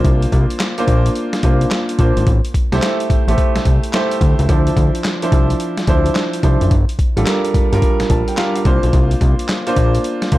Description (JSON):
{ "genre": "R&B, new jack swing", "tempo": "108 BPM", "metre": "4/4", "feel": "swing 64% on 16ths", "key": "unclear", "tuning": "A4 = 440 Hz", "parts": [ { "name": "warm baby grand piano", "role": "accompaniment", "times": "0.0-10.4 s", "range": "F3 to A5", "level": "-18 LUFS", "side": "right 1 dB", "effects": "none" }, { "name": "fat analog bass", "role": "bass", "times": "0.0-10.4 s", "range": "F#1 to D2", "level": "-16 LUFS", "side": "equal", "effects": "none" }, { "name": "boom bap sampler-style drum kit", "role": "drums", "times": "0.0-10.4 s", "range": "handclaps, hi-hat, kick drum, snare drum", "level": "-16 LUFS", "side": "equal", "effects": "none" } ], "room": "digital ambience", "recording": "dark, warm production", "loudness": "-13 LUFS", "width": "side -16 dB against mid", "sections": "0.0-10.4 A section", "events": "grand piano fill 7.8-8.9", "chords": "0.0 C9sus4; 2.3 Am7; 4.5 Dm9; 6.7 Gm7; 8.7 C9sus4", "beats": "| 0.04 0.60 1.16 1.71 | 2.27 2.82 3.38 3.93 | 4.49 5.04 5.60 6.16 | 6.71 7.27 7.82 8.38 | 8.93 9.49 10.04" }